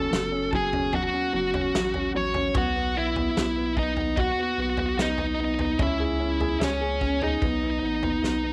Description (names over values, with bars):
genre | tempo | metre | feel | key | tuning
pop ballad | 74 BPM | 4/4 | straight | unclear | A4 = 440 Hz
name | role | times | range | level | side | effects
fuzz lead guitar | melody | 0.0-8.5 s | C#4 to C#6 | -29 LUFS | equal | distortion, slapback echo
felt-muted upright piano | accompaniment | 0.0-8.5 s | F#3 to G#4 | -32 LUFS | equal | none
saturated sub bass | bass | 0.0-8.5 s | F#1 to C#2 | -34 LUFS | equal | none
natural country drum kit | drums | 0.1-8.4 s | kick drum, snare drum, toms | -33 LUFS | equal | none
room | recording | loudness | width
light reverb, small room ambience | none | -26 LUFS | mono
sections
0.0-8.5 A section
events
drum fill 8.2-8.5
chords
0.0 F#m; 2.6 B; 5.8 C#m; 7.4 B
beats
0.12 0.93 1.74 | 2.55 3.36 4.17 4.98 | 5.79 6.61 7.42 8.23